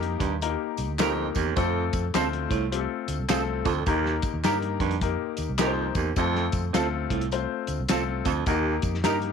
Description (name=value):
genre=uptempo 1960s-style soul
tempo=104 BPM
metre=4/4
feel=swing 63% on 8ths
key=F mixolydian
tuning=A4 = 440 Hz
part: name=clear baby grand piano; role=accompaniment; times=0.0-9.3 s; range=Ab3 to C5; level=-29 LUFS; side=left 12 dB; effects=none
part: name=vintage muted fingered electric bass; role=bass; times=0.0-9.3 s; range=C2 to G2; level=-30 LUFS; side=right 1 dB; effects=transformer saturation
part: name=warm soul drum kit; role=drums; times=0.0-9.3 s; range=hi-hat, kick drum, snare drum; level=-30 LUFS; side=left 2 dB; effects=none
part: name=raspy baritone saxophone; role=riff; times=0.2-8.8 s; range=Eb2 to A2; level=-30 LUFS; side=right 12 dB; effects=none
part: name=tambourine and handclaps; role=percussion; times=0.2-9.2 s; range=none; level=-37 LUFS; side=left 2 dB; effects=none
part: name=semi-hollow electric guitar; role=stabs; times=1.0-9.2 s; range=C4 to Bb4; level=-30 LUFS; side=right 12 dB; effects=ensemble chorus
room=light reverb, small room ambience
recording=1960s-style stereo with parts hard left and right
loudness=-24 LUFS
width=side -6 dB against mid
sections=0.0-9.3 A section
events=none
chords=0.0 Eb; 1.6 F; 3.9 Eb; 6.2 F; 8.5 Eb